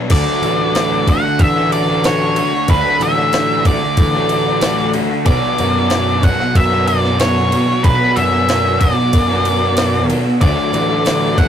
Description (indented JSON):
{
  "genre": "rock, shoegaze and dream pop",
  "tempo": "93 BPM",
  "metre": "4/4",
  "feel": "straight",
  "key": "unclear",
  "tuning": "A4 = 439 Hz",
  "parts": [
    { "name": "crunchy overdriven guitar", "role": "riff", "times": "0.0-11.5 s", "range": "B2 to D4", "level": "-22 LUFS", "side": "left 1 dB", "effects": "none" },
    { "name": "overdriven electric guitar", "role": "riff", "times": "0.0-11.5 s", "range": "B2 to D4", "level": "-21 LUFS", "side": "left 3 dB", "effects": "none" },
    { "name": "overdriven semi-hollow guitar", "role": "riff", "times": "0.0-11.5 s", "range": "B2 to F#4", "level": "-21 LUFS", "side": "right 3 dB", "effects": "none" },
    { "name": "octave-fuzz lead guitar", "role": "melody", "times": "0.1-11.5 s", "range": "B4 to F#5", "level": "-18 LUFS", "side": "left 1 dB", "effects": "distortion" },
    { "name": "fuzz picked electric bass", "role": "bass", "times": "0.1-11.5 s", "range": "A1 to F#2", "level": "-20 LUFS", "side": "equal", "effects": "overdrive" },
    { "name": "jungle sampler-style drum kit", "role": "drums", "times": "0.1-11.5 s", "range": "crash cymbal, kick drum, ride cymbal, snare drum", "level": "-18 LUFS", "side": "equal", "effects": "none" },
    { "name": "tambourine", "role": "percussion", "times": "0.1-11.2 s", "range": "none", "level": "-39 LUFS", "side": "left 4 dB", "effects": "none" }
  ],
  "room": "wet booth ambience, RT60 0.2 s",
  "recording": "rough rehearsal-room recording, tube saturation",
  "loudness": "-12 LUFS",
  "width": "side -9 dB against mid",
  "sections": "0.1-11.5 A section",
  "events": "none",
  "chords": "0.1 D; 5.3 Bm; 10.4 D"
}